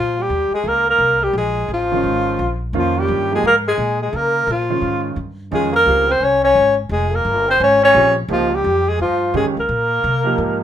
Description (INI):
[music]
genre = modal jazz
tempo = 173 BPM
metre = 4/4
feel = swing 62% on 8ths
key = Bb dorian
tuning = A4 = 440 Hz
[part]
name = breathy alto saxophone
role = melody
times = 0.0-10.6 s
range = F4 to Db5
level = -16 LUFS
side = equal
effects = none
[part]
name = bright trombone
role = second line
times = 0.0-10.6 s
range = F3 to Db4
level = -22 LUFS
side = left 2 dB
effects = none
[part]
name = upright bass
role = bass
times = 0.0-10.6 s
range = F1 to Db3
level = -24 LUFS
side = equal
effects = none
[part]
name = warm baby grand piano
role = accompaniment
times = 1.9-10.6 s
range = Eb3 to Ab4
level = -22 LUFS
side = right 5 dB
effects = none
[sound]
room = moderate studio reverb, RT60 0.6 s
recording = minimal, uncompressed stereo recording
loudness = -14 LUFS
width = side -10 dB against mid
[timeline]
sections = 0.0-10.6 A section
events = none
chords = 0.0 Bbm9